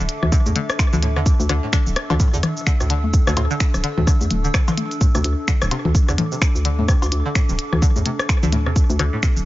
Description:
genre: minimal techno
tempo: 128 BPM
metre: 4/4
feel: swing 59% on 16ths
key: unclear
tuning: A4 = 436 Hz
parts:
  - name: hollow knocking FM bass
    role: bass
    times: 0.0-9.4 s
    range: D1 to E2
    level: -21 LUFS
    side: equal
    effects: tube saturation, sidechain pumping
  - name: warbly tape-like pad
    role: texture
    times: 0.0-9.5 s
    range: D4 to E6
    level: -29 LUFS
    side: left 2 dB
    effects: chorus, built-in reverb, sidechain pumping
  - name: minimal click drum kit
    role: drums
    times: 0.1-9.4 s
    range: finger snaps, hi-hat, shaker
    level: -26 LUFS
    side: equal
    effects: none
  - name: booming analog drum machine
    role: percussion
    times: 0.2-9.1 s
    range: congas, cowbell, rim click, toms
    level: -24 LUFS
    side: left 3 dB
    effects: digital delay
  - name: string-like resonator pluck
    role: riff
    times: 0.3-9.3 s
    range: A2 to D3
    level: -27 LUFS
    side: equal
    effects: chorus, phaser, sidechain pumping, dub echo
  - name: electronic kick drum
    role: drums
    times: 0.3-9.3 s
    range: none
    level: -17 LUFS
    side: equal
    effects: none
room: little or no reverb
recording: nothing above 7.5 kHz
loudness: -16 LUFS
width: side -16 dB against mid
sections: 0.0-9.5 A section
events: none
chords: 0.0 D5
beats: 0.32 0.79 | 1.26 1.73 2.20 2.67 | 3.13 3.60 4.07 4.54 | 5.01 5.48 5.95 6.42 | 6.88 7.35 7.82 8.29 | 8.76 9.23

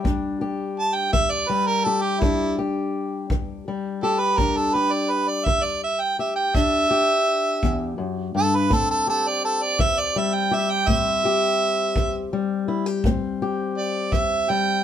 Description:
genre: acoustic country blues, solo or duo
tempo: 56 BPM (dotted quarters)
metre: 12/8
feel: straight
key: E minor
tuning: A4 = 440 Hz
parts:
  - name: fingerpicked old ladder-braced acoustic guitar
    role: accompaniment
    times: 0.0-14.8 s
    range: E2 to G4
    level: -25 LUFS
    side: left 4 dB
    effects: none
  - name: kick drum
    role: drums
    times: 0.0-14.3 s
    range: none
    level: -25 LUFS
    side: equal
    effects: none
  - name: clear harmonica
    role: melody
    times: 0.8-14.8 s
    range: E4 to A5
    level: -21 LUFS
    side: right 3 dB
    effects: none
room: light reverb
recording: minimal, uncompressed stereo recording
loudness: -20 LUFS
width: side -10 dB against mid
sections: 0.0-14.8 A section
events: harmonica solo 0.0-14.8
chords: 0.0 Em7; 8.7 Am7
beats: | 0.05 1.14 2.22 3.30 | 4.38 5.46 6.55 7.63 | 8.71 9.79 10.87 11.96 | 13.04 14.12

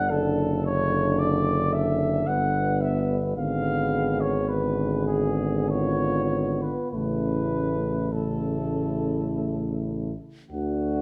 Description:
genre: classical, hymn-like piece for brass band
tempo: 48-56 BPM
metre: 3/4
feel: rubato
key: D major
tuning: A4 = 440 Hz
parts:
  - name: mellow flugelhorn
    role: melody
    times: 0.0-11.0 s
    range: G#4 to F#5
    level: -31 LUFS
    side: equal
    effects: none
  - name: clear euphonium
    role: accompaniment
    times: 0.0-11.0 s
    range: A3 to D4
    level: -34 LUFS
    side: equal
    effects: none
  - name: dark trombone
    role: accompaniment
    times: 0.0-11.0 s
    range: C#3 to D3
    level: -32 LUFS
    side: equal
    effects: none
  - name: warm tuba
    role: bass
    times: 0.0-11.0 s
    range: F#1 to D2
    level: -31 LUFS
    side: equal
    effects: none
  - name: mellow French horn section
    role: second line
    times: 0.1-11.0 s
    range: E4 to B4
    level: -35 LUFS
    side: equal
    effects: none
room: moderate recital hall reverb, RT60 1.4 s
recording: none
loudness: -25 LUFS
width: mono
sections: 0.0-10.5 A section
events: none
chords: 0.1 D/F#; 2.3 Gmaj7; 3.4 G#dim7; 6.9 A; 10.5 D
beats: | 0.09 1.17 2.26 | 3.36 4.48 5.70 | 6.93 8.13 9.31 | 10.52

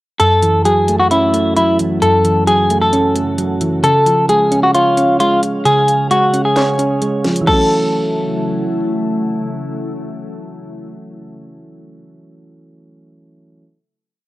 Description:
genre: hip hop, trap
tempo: 132 BPM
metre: 4/4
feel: half-time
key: F# minor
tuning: A4 = 440 Hz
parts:
  - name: semi-hollow electric guitar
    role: melody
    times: 0.2-8.8 s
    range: E4 to A4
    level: -13 LUFS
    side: left 1 dB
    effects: cassette tape
  - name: soft electric-piano-like synth keys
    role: accompaniment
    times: 0.2-13.6 s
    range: F#2 to C#5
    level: -18 LUFS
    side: right 1 dB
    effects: chorus, cassette tape
  - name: glassy FM pad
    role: sustained chords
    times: 0.6-11.2 s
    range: C#3 to E#5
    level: -24 LUFS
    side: left 1 dB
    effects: ensemble chorus, built-in reverb, cassette tape
  - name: trap drum kit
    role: drums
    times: 0.2-7.6 s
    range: crash cymbal, handclaps, hi-hat, kick drum, snare drum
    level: -23 LUFS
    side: equal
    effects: cassette tape
room: moderate spring reverb, RT60 1.6 s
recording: home recording on cassette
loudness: -12 LUFS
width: side -17 dB against mid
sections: 0.2-7.5 breakdown; 7.5-11.1 final chord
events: none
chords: 0.2 F#m7; 3.8 C#; 7.5 F#m7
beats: | 0.20 0.66 1.11 1.56 | 2.02 2.47 2.93 3.38 | 3.84 4.29 4.75 5.20 | 5.66 6.11 6.56 7.02 | 7.47 7.93 8.38 8.84 | 9.29 9.75 10.20 10.65

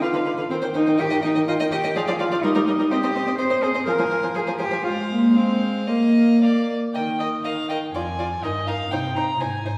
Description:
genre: quick classical-period movement for string quartet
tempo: 123 BPM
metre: 2/4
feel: rubato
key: Eb major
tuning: A4 = 441 Hz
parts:
  - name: dark violin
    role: melody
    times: 0.0-9.8 s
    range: Eb5 to Bb5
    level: -32 LUFS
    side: equal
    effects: none
  - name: rich violin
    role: second line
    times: 0.0-9.7 s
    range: Bb4 to Eb5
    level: -33 LUFS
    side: equal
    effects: none
  - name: rich viola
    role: accompaniment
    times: 0.0-9.7 s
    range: D3 to Bb4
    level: -28 LUFS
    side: equal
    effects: none
  - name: rich cello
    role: bass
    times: 0.0-9.8 s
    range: F2 to C5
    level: -24 LUFS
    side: equal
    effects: none
room: wet recital hall reverb, RT60 1.7 s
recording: heard from further back in the room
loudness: -22 LUFS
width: mono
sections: 0.0-7.0 A section; 7.0-9.8 B section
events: none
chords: 0.0 Bdim/D; 0.5 Cm/Eb; 1.0 Eb; 2.0 Ddim/F; 2.4 Eb/G; 2.9 Cm; 3.9 Fm; 4.8 Fm/Ab; 5.9 Bbsus4; 7.0 Eb5; 7.9 Ddim/F; 8.4 Eb/G; 8.9 Cm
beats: | 0.01 0.50 | 0.99 1.48 | 1.96 2.43 | 2.91 3.39 | 3.87 4.36 | 4.85 5.36 | 5.89 6.43 | 6.96 7.45 | 7.95 8.43 | 8.92 9.40

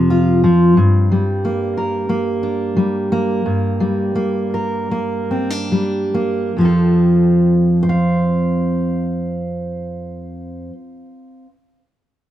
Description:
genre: folk, solo fingerstyle acoustic guitar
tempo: 70-92 BPM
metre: 4/4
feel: rubato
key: F major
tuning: A4 = 439 Hz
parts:
  - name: fingerpicked steel-string acoustic guitar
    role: solo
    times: 0.0-11.5 s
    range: F2 to F5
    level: -15 LUFS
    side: equal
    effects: none
room: little or no reverb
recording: recorded outdoors, with no room sound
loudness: -15 LUFS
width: side -12 dB against mid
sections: 0.8-6.6 A section; 6.6-10.0 B section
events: slowing down 0.8-6.6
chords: 0.0 F5; 0.8 Gm; 6.6 F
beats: 0.10 | 0.77 1.43 2.08 2.75 | 3.44 4.16 4.91 5.71 | 6.55 7.40 8.24 9.09

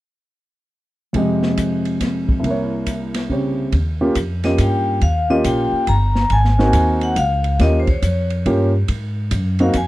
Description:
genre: jazz, small-group swing and bop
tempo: 140 BPM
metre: 3/4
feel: swing 65% on 8ths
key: Eb mixolydian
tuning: A4 = 443 Hz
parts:
  - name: warm grand piano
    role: accompaniment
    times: 1.1-9.7 s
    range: C2 to Eb5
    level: -18 LUFS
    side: right 1 dB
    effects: none
  - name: open jazz drum kit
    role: drums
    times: 1.1-9.9 s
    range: hi-hat, kick drum, ride cymbal, snare drum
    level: -25 LUFS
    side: equal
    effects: none
  - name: upright bass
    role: bass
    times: 3.7-9.9 s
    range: G1 to Ab2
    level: -18 LUFS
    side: equal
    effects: none
  - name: vibraphone with medium hard mallets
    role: melody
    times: 4.4-9.9 s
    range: C5 to Bb5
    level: -21 LUFS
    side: left 2 dB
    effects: none
room: little or no reverb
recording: dry, close 1970s-style studio recording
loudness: -16 LUFS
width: side -17 dB against mid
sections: 1.1-3.7 A section; 3.7-9.9 B section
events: none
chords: 1.1 Fm9; 2.4 C7b9; 3.7 Eb7; 6.3 Ab7; 7.6 Eb7; 8.9 Ab7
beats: | 1.15 1.58 2.01 | 2.44 2.87 3.30 | 3.73 4.16 4.59 | 5.02 5.45 5.88 | 6.31 6.74 7.17 | 7.60 8.03 8.46 | 8.89 9.32 9.75

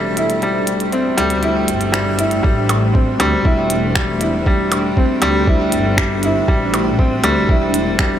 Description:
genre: piano and strings electronica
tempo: 119 BPM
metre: 4/4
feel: straight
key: A minor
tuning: A4 = 436 Hz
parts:
  - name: granular cloud pad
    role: sustained chords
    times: 0.0-8.2 s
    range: A3 to C5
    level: -22 LUFS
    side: right 1 dB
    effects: built-in reverb, sidechain pumping, shimmer reverb
  - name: clear upright piano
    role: riff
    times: 0.0-8.2 s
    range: G3 to E4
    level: -17 LUFS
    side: left 1 dB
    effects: digital delay, shimmer reverb
  - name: dark studio double bass section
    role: bass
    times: 0.0-8.2 s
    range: E1 to D2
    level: -22 LUFS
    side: equal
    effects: sidechain pumping
  - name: minimal click drum kit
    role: drums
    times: 0.2-8.1 s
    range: finger snaps, hi-hat, percussion blips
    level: -23 LUFS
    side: right 1 dB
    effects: high-pass filter on hats, high-pass filter on snare, high-pass filter on perc, high-pass filter on room
  - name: electronic kick drum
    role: drums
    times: 2.4-8.1 s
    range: none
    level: -16 LUFS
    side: equal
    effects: overdrive
room: moderate huge ambient reverb, RT60 7.9 s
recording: none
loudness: -14 LUFS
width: side -10 dB against mid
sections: 0.0-2.4 A section; 2.4-8.2 B section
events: build-up 0.0-2.4; drop 2.4-8.2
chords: 0.0 Am7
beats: | 0.43 0.94 1.44 1.94 | 2.45 2.95 3.46 3.96 | 4.46 4.97 5.47 5.98 | 6.48 6.99 7.49 7.99

